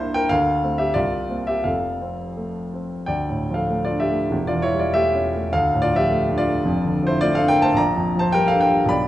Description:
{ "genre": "classical, romantic character piece for solo piano", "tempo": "81-109 BPM", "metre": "2/4", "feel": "rubato", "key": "F major, D minor from 3.1 s", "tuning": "A4 = 442 Hz", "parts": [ { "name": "warm grand piano", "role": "solo", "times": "0.0-9.1 s", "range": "E1 to B5", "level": "-18 LUFS", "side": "equal", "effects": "none" } ], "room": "wet recital hall reverb, RT60 1.4 s", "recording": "dark, warm production, nothing above 10.5 kHz", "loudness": "-18 LUFS", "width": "side -13 dB against mid", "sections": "0.0-3.1 A section; 3.1-9.1 B section", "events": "none", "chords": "0.3 Dm7; 1.0 C5; 1.7 F; 3.1 Dm; 4.3 A7/E; 5.5 Dm; 6.7 Dm/F; 7.8 Gm7/Bb" }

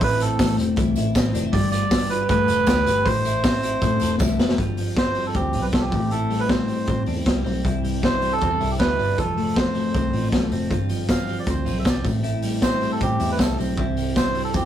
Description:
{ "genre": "jangly indie pop", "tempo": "157 BPM", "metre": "4/4", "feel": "straight", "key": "A minor", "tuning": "A4 = 440 Hz", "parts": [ { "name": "melodica", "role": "melody", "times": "0.0-14.7 s", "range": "G4 to F5", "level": "-24 LUFS", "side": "right 3 dB", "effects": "none" }, { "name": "twelve-string electric guitar", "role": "arpeggios", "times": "0.0-14.7 s", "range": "G2 to B4", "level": "-25 LUFS", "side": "left 2 dB", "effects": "none" }, { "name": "vintage muted picked electric bass", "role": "bass", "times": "0.0-14.7 s", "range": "E1 to E2", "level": "-26 LUFS", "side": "equal", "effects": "none" }, { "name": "raw garage drum kit", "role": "drums", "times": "0.0-14.6 s", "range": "hi-hat, kick drum, snare drum", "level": "-23 LUFS", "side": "equal", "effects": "none" }, { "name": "tambourine", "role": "percussion", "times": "0.2-4.5, 10.9-14.6 s", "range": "none", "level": "-42 LUFS", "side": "right 5 dB", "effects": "none" } ], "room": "moderate small room reverb, RT60 0.6 s", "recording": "rough rehearsal-room recording, tube saturation", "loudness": "-19 LUFS", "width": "side -10 dB against mid", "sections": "0.0-4.6 A section; 4.6-14.7 B section", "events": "drum fill 4.2-4.6", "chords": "0.0 Am; 1.5 Gadd9; 3.1 Amadd9; 4.6 G7sus4; 5.9 Am7; 7.6 Cadd9; 9.2 F; 10.7 G7sus4; 12.1 Am7; 13.8 Cadd9" }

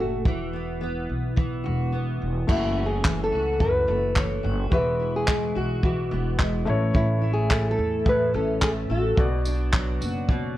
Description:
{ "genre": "acoustic pop", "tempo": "108 BPM", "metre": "4/4", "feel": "swing 55% on 16ths", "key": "F# minor", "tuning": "A4 = 441 Hz", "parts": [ { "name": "nylon-string guitar", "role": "melody", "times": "0.0-10.6 s", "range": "E4 to C#5", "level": "-27 LUFS", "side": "equal", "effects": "ping-pong delay" }, { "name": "fingerpicked steel-string acoustic guitar", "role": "accompaniment", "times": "0.0-10.6 s", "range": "F#2 to A4", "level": "-29 LUFS", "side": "equal", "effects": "double-tracked left and right" }, { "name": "upright bass", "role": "bass", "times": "0.0-10.5 s", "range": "E1 to E2", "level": "-27 LUFS", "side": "equal", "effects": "none" }, { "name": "compact cocktail drum kit", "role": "drums", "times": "0.3-10.4 s", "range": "crash cymbal, handclaps, kick drum, tambourine", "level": "-23 LUFS", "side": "equal", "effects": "none" }, { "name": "felt-muted upright piano", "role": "accompaniment", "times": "2.5-10.6 s", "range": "G3 to E5", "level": "-33 LUFS", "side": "left 4 dB", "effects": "none" } ], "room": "moderate studio reverb, RT60 0.8 s", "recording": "worn, warbling old tape, cassette tape, warbly pitch drift", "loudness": "-22 LUFS", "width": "side -14 dB against mid", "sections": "0.0-2.5 A section; 2.5-10.6 B section", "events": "none", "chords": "0.3 Esus2; 2.5 F#m7; 4.7 Eadd9; 6.7 A; 9.2 Bm" }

